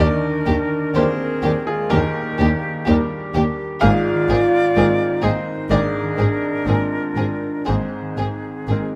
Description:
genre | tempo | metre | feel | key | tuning
cinematic | 62 BPM | 4/4 | rubato | unclear | A4 = 439 Hz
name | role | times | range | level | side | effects
dark studio violin section | melody | 0.0-8.8 s | G4 to Ab4 | -29 LUFS | equal | none
silver concert flute | second line | 0.0-9.0 s | F4 to D5 | -30 LUFS | equal | none
warm chamber violin section | second line | 0.0-8.8 s | C4 to D4 | -35 LUFS | equal | none
warm clarinet | second line | 0.0-9.0 s | Eb4 to Bb4 | -31 LUFS | equal | none
bright baby grand piano | accompaniment | 0.0-9.0 s | Ab1 to F5 | -27 LUFS | equal | none
dark symphonic viola section | accompaniment | 0.0-8.8 s | Bb3 | -31 LUFS | equal | none
dark French horn section | sustained chords | 0.0-9.0 s | Ab3 to F4 | -26 LUFS | equal | none
concert harp | arpeggios | 0.0-9.0 s | Ab2 to G5 | -34 LUFS | equal | none
rich symphonic double bass section | bass | 0.0-8.8 s | Ab1 to Eb2 | -26 LUFS | equal | none
warm studio cello section | bass | 0.0-8.8 s | Eb2 to Ab2 | -25 LUFS | equal | none
room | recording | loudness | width
light reverb | close, detailed microphones | -20 LUFS | mono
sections
0.0-9.0 A section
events
none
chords
0.0 Ebmaj7; 3.8 Abadd9

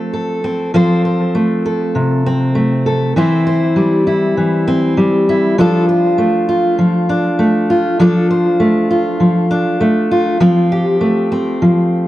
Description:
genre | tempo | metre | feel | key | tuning
folk | 99 BPM | 4/4 | straight | unclear | A4 = 439 Hz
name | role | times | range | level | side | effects
fingerpicked steel-string acoustic guitar | solo | 0.0-12.1 s | C3 to C5 | -12 LUFS | equal | analog delay
room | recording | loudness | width
light reverb | worn, warbling old tape, cassette tape, warbly pitch drift | -12 LUFS | side -15 dB against mid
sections
0.7-10.4 A section; 10.4-12.1 B section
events
none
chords
0.0 F; 3.2 C/E; 5.6 Dm/F; 10.4 Fadd9

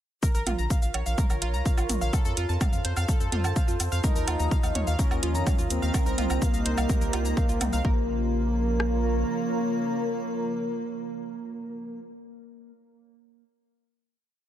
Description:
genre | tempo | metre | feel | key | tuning
melodic techno | 126 BPM | 4/4 | straight | Bb harmonic minor | A4 = 440 Hz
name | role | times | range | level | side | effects
analog pluck | arpeggios | 0.2-8.1 s | F4 to Bb5 | -34 LUFS | right 1 dB | chorus, sidechain pumping, dub echo
house drum kit | drums | 0.2-8.9 s | kick drum, rim click | -25 LUFS | equal | none
house drum kit | drums | 0.2-7.8 s | hi-hat, shaker, toms, woodblock | -32 LUFS | right 1 dB | sidechain pumping on perc, sidechain pumping on hats, sidechain pumping on toms
warbly tape-like pad | texture | 0.8-12.2 s | F4 to Bb5 | -36 LUFS | equal | chorus, built-in reverb, sidechain pumping
round analog bass | bass | 0.3-9.2 s | Bb1 to Gb2 | -28 LUFS | equal | sidechain pumping
expressive portamento lead | melody | 4.0-12.0 s | Bb3 to Eb4 | -31 LUFS | right 1 dB | wide subtle chorus, sidechain pumping, ping-pong delay
airy dreamy lead | second line | 4.0-12.0 s | Bb4 to Eb5 | -36 LUFS | left 2 dB | chorus, sidechain pumping, dub echo
warm analog pad | sustained chords | 4.0-12.0 s | C3 to F4 | -36 LUFS | equal | chorus, sidechain pumping
room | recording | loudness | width
little or no reverb | none | -24 LUFS | side -11 dB against mid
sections
0.2-7.8 drop; 7.8-11.7 final chord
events
drop 0.2-7.8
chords
0.2 Bbm; 2.1 F; 4.0 Ebsus2; 5.9 Cm7; 7.8 Bbm

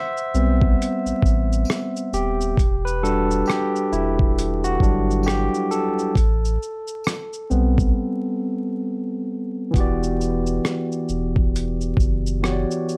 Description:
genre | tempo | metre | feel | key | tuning
lo-fi hip hop | 67 BPM | 4/4 | swing 60% on 16ths | E minor from 9.7 s | A4 = 440 Hz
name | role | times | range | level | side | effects
barky tine electric piano | accompaniment | 0.0-13.0 s | E3 to F#5 | -25 LUFS | equal | low-pass filter
dusty soul sampler-style drum kit | drums | 0.2-13.0 s | hi-hat, kick drum, rim click, shaker | -24 LUFS | equal | overdrive
warm sub bass | bass | 0.3-12.7 s | D#1 to B1 | -26 LUFS | equal | none
tambourine | percussion | 1.6-7.3 s | none | -45 LUFS | equal | none
room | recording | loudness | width
light reverb | vinyl crackle | -22 LUFS | mono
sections
0.0-9.7 A section; 9.7-13.0 B section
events
tine electric piano solo 0.0-9.7; break 7.9-9.7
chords
0.0 Am7; 2.6 Em7; 6.2 Am7; 9.7 Em9

